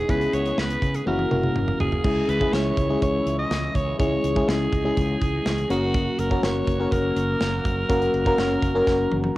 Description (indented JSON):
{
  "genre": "1980s-style pop",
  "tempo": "123 BPM",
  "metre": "4/4",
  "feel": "straight",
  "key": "unclear",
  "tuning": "A4 = 440 Hz",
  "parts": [
    { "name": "raspy alto saxophone", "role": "melody", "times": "0.0-9.2 s", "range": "F#4 to D#5", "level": "-28 LUFS", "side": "right 1 dB", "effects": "cassette tape" },
    { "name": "FM electric piano", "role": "accompaniment", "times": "0.0-9.4 s", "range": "G#3 to A#4", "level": "-24 LUFS", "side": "left 1 dB", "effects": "chorus, cassette tape" },
    { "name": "sweeping resonant pad", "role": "sustained chords", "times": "0.0-9.4 s", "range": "C#3 to D#5", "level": "-34 LUFS", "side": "right 1 dB", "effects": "chorus, cassette tape" },
    { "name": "fretless electric bass", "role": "bass", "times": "0.0-9.3 s", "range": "F#1 to C#3", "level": "-28 LUFS", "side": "equal", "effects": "none" },
    { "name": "modern studio drum kit", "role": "drums", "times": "0.1-9.4 s", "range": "crash cymbal, hi-hat, kick drum, snare drum, toms", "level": "-27 LUFS", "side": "equal", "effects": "cassette tape" }
  ],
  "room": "moderate spring reverb, RT60 1.9 s, small room reverb",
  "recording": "home recording on cassette",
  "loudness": "-20 LUFS",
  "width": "side -17 dB against mid",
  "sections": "0.0-2.0 A section; 2.0-9.4 B section",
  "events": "drum fill 1.1-2.0, 8.9-9.4",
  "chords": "0.1 C#m7; 1.1 F#7; 2.0 C#m; 5.7 F#"
}